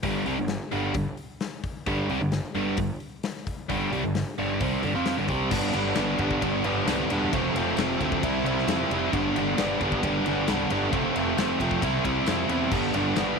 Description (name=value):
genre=classic rock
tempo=133 BPM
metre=4/4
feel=straight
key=G mixolydian from 5.5 s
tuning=A4 = 440 Hz
part: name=biting overdriven guitar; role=riff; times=0.0-13.4 s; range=F2 to F4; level=-24 LUFS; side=right 1 dB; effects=none
part: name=fuzz picked electric bass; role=bass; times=0.0-13.3 s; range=E1 to F2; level=-32 LUFS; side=right 1 dB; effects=overdrive
part: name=big rock drum kit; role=drums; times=0.0-13.3 s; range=crash cymbal, hi-hat, kick drum, ride cymbal, snare drum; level=-32 LUFS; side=left 4 dB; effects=none
part: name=tambourine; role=percussion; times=6.0-13.3 s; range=none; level=-44 LUFS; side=right 16 dB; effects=none
room=light reverb, small room ambience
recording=1960s-style stereo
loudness=-24 LUFS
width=side -5 dB against mid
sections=0.0-5.5 A section; 5.5-13.4 B section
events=none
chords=0.0 G5; 5.5 G; 7.3 F; 8.2 C; 9.1 G; 10.9 F; 11.8 C; 12.7 G